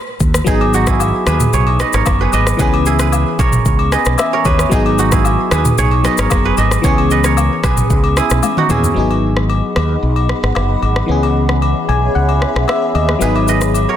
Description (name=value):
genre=afrobeats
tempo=113 BPM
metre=4/4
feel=straight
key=G# minor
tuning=A4 = 440 Hz
part: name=mellow fretless electric bass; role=bass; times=0.2-13.8 s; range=F#1 to D#2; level=-16 LUFS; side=equal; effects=analog chorus
part: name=afro-pop drum kit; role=drums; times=0.2-13.9 s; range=kick drum, rim click, shaker, toms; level=-18 LUFS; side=equal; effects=none
part: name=FM electric piano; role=accompaniment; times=0.4-14.0 s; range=E3 to G#5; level=-18 LUFS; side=left 3 dB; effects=chorus
part: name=kora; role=riff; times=0.5-14.0 s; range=D#4 to D#5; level=-18 LUFS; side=right 7 dB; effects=digital delay
part: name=agogo bells and woodblock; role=percussion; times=0.6-13.9 s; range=none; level=-24 LUFS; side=left 9 dB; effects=none
part: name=granular cloud pad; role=sustained chords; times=9.5-14.0 s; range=G#4 to B5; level=-21 LUFS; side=right 1 dB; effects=built-in reverb
room=light reverb, digital ambience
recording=dense, heavily limited modern master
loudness=-11 LUFS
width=side -10 dB against mid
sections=0.0-9.0 A section; 9.0-14.0 B section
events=FM electric piano fill 3.7-4.7, 11.6-13.2; drum fill 8.4-9.0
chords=0.5 G#m7; 2.6 C#m7; 4.7 G#m7; 6.8 C#m7; 9.0 G#m7; 11.1 C#m7; 13.2 G#m7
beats=| 0.47 1.00 1.53 2.06 | 2.59 3.12 3.65 4.19 | 4.72 5.25 5.78 6.31 | 6.84 7.37 7.90 8.43 | 8.96 9.50 10.03 10.56 | 11.09 11.62 12.15 12.68 | 13.21 13.74